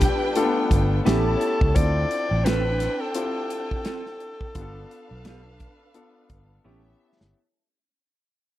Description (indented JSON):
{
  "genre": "lush 1970s-style soul",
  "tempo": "86 BPM",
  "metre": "4/4",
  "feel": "swing 58% on 16ths",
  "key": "D dorian",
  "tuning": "A4 = 444 Hz",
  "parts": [
    { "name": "breathy alto saxophone", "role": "melody", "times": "0.0-6.6 s", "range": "G4 to D5", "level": "-28 LUFS", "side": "left 2 dB", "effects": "slapback echo" },
    { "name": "dark symphonic violin section", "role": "second line", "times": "0.0-7.3 s", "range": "C4 to A5", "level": "-31 LUFS", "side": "right 1 dB", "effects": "none" },
    { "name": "warm grand piano", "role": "accompaniment", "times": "0.0-7.4 s", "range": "A3 to A4", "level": "-28 LUFS", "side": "left 4 dB", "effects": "none" },
    { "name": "mellow French horn section", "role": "sustained chords", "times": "0.0-1.8 s", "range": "G3 to B4", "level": "-33 LUFS", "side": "right 1 dB", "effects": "none" },
    { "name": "vintage muted fingered electric bass", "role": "bass", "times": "0.0-7.3 s", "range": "G1 to D2", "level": "-24 LUFS", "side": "equal", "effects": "none" },
    { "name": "modern studio drum kit", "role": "drums", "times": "0.0-7.3 s", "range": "hi-hat, kick drum, snare drum", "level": "-24 LUFS", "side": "equal", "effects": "none" },
    { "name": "electric guitar through a small old amp", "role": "riff", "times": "1.1-6.8 s", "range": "A3 to A4", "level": "-32 LUFS", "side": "right 7 dB", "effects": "spring reverb" }
  ],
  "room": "small room ambience",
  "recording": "dry, close 1970s-style studio recording",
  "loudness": "-20 LUFS",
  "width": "side -14 dB against mid",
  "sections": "0.0-7.3 A section",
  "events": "fade-out 0.0-7.3; drum fill 6.6-7.3",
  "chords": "0.0 G7; 1.1 A7; 1.8 Dm7; 4.6 G7; 6.6 A7",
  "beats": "0.36 1.06 | 1.76 2.46 3.16 3.86 | 4.55 5.25 5.95 6.65"
}